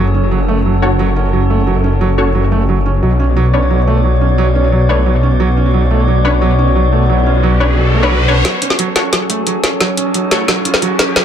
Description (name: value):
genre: dark technical drum and bass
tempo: 177 BPM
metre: 4/4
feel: straight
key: F# minor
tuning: A4 = 440 Hz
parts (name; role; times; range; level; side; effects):
- metallic inharmonic drone; sustained chords; 0.0-11.2 s; F#3 to D5; -19 LUFS; equal; chorus, built-in reverb
- felt-muted upright piano; arpeggios; 0.0-11.2 s; F#3 to C#4; -18 LUFS; right 5 dB; low-pass filter, ping-pong delay
- snarling distorted saw bass; bass; 0.0-8.4 s; F#1 to B1; -12 LUFS; left 1 dB; distortion, overdrive
- orchestra-hit-like synth stab; stabs; 0.8-10.4 s; D4 to C#5; -20 LUFS; left 3 dB; built-in reverb, ping-pong delay
- riser; sound effects; 6.7-11.2 s; none; -22 LUFS; left 1 dB; none
- drum and bass drum kit; drums; 8.4-11.2 s; hi-hat, snare drum; -14 LUFS; left 1 dB; none
room: light reverb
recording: none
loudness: -10 LUFS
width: side -9 dB against mid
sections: 0.0-8.4 A section; 8.4-11.2 B section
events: filter sweep on synth stab 0.0-8.4; riser 6.7-8.4, 8.4-11.2; build-up 8.4-11.2; drum fill 8.4-11.2; filter sweep on synth drone 8.4-11.2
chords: 0.0 F#m; 3.0 Bmadd9; 8.4 F#m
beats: | 0.31 0.65 0.99 1.33 | 1.67 2.01 2.35 2.69 | 3.02 3.36 3.70 4.04 | 4.38 4.72 5.06 5.40 | 5.74 6.08 6.42 6.75 | 7.09 7.43 7.77 8.11 | 8.45 8.79 9.13 9.47 | 9.80 10.14 10.48 10.82 | 11.16